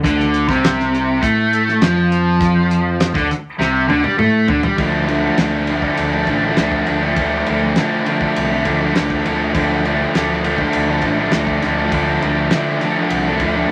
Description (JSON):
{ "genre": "psychedelic rock", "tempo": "101 BPM", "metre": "4/4", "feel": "straight", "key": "D minor", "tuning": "A4 = 440 Hz", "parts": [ { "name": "overdriven electric guitar", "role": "riff", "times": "0.0-13.7 s", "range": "C3 to D4", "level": "-18 LUFS", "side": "equal", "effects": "none" }, { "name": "fuzz fingered electric bass", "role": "bass", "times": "0.0-13.6 s", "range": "A1 to D3", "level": "-26 LUFS", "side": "equal", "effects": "overdrive" }, { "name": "damped 70s drum kit", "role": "drums", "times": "0.0-13.5 s", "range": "hi-hat, kick drum, ride cymbal, snare drum, toms", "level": "-25 LUFS", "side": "equal", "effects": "none" } ], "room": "moderate studio reverb, RT60 0.6 s", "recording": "vinyl crackle", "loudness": "-17 LUFS", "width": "mono", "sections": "0.0-4.8 A section; 4.8-13.7 B section", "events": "drum fill 3.6-4.8", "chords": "0.0 Dm" }